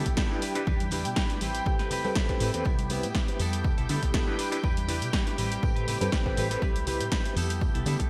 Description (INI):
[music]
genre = filtered disco house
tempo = 121 BPM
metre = 4/4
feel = swing 54% on 16ths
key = A minor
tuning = A4 = 440 Hz
[part]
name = overdriven reed electric piano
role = accompaniment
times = 0.0-8.1 s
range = B3 to B4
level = -37 LUFS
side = equal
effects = fast tremolo, phaser, sidechain pumping, low-pass filter
[part]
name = string machine, full ensemble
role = sustained chords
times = 0.0-8.1 s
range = G4 to G5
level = -39 LUFS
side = equal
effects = ensemble chorus, vintage 12-bit sampler grit, sidechain pumping, low-pass filter
[part]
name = semi-hollow electric guitar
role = riff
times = 0.0-8.1 s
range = G3 to B4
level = -38 LUFS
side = equal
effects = vintage 12-bit sampler grit, sidechain pumping, low-pass filter
[part]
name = plucky analog bass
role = bass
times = 0.0-8.1 s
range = A1 to D3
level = -34 LUFS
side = equal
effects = sidechain pumping, low-pass filter
[part]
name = electronic kick drum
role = drums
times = 0.1-8.1 s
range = none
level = -31 LUFS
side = equal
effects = none
[part]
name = punchy analog drum machine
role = drums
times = 0.1-8.1 s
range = hi-hat, snare drum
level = -36 LUFS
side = equal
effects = sidechain pumping on cymbals, sidechain pumping on hats, gated reverb
[part]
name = tambourine and congas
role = percussion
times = 0.1-8.1 s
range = none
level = -42 LUFS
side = equal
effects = sidechain pumping on perc, low-pass filter on perc
[sound]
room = moderate lush hall reverb, RT60 1.7 s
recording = bright 1980s-style digital production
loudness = -28 LUFS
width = mono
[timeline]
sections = 0.0-8.1 A section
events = none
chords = 0.4 Em7; 1.4 Am9; 2.7 Cmaj7; 3.4 Fmaj9#11; 4.4 Em7; 5.4 Am9; 6.6 Cmaj7; 7.4 Fmaj9#11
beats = 0.17 | 0.67 1.17 1.66 2.16 | 2.65 3.15 3.65 4.14 | 4.64 5.13 5.63 6.12 | 6.62 7.12 7.61